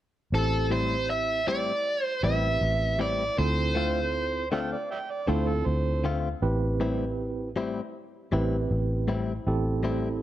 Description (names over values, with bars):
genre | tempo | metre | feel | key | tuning
blues | 79 BPM | 4/4 | swing 53% on 16ths | A minor | A4 = 435 Hz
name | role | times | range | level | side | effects
overdriven electric guitar | melody | 0.3-4.5 s | A4 to E5 | -27 LUFS | right 1 dB | none
tine electric piano | accompaniment | 0.3-10.2 s | C4 to C5 | -31 LUFS | right 4 dB | fast stereo tremolo
vintage muted fingered electric bass | bass | 0.3-10.2 s | A1 to D2 | -28 LUFS | equal | none
direct-recorded clean electric guitar | stabs | 0.7-10.1 s | A2 to F4 | -32 LUFS | left 4 dB | spring reverb
overdriven harmonica | second line | 4.5-6.0 s | A4 to G5 | -34 LUFS | right 4 dB | slapback echo
room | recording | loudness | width
little or no reverb | dry, close 1970s-style studio recording | -25 LUFS | side -13 dB against mid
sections
0.3-10.2 A section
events
none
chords
0.3 Am7; 3.4 Dm7; 6.4 Am7